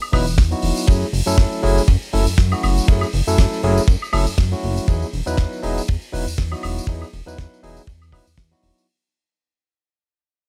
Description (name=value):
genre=nu-disco, nu disco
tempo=120 BPM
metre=4/4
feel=swing 55% on 16ths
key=unclear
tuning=A4 = 439 Hz
part: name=damped 70s drum kit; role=drums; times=0.0-8.9 s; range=hi-hat, ride cymbal, snare drum, tambourine, woodblock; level=-29 LUFS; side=equal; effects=studio reverb
part: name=barky tine electric piano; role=accompaniment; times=0.1-8.9 s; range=F#3 to B4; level=-25 LUFS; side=equal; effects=sidechain pumping
part: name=chorused synth bass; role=bass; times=0.1-8.7 s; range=E1 to F#2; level=-23 LUFS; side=equal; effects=none
part: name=kick drum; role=drums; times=0.1-8.5 s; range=none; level=-17 LUFS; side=equal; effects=studio reverb
room=small room reverb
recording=none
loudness=-19 LUFS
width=mono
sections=0.0-8.9 A section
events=drop 0.0-8.9; fade-out 3.5-8.9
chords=0.0 Emaj7(no3); 0.9 F#m7; 4.9 Emaj7